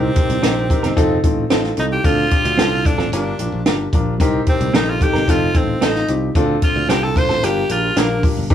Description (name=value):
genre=uptempo 1960s-style soul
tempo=112 BPM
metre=4/4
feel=straight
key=C dorian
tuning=A4 = 439 Hz
part: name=raspy tenor saxophone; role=melody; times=0.0-8.2 s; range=Bb3 to C5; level=-20 LUFS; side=right 1 dB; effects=none
part: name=warm grand piano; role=accompaniment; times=0.0-8.5 s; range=G2 to C5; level=-21 LUFS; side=left 2 dB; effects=none
part: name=modern bright fingered electric bass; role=bass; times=0.0-8.5 s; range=F1 to D2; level=-22 LUFS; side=right 1 dB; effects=none
part: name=compact cocktail drum kit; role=drums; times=0.2-8.5 s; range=hi-hat, kick drum, snare drum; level=-18 LUFS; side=equal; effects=none
part: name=clean electric guitar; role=stabs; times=0.4-8.1 s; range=C4 to Bb4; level=-22 LUFS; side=right 4 dB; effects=none
room=moderate studio reverb, RT60 0.6 s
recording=band playing live in one room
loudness=-14 LUFS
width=side -10 dB against mid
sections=0.0-8.5 A section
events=tenor saxophone solo 0.0-8.5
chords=0.0 Cm7; 1.0 F7; 2.0 Dm7; 3.1 Gm7; 4.2 Cm7; 5.3 F7; 6.4 Dm7; 7.4 Gm7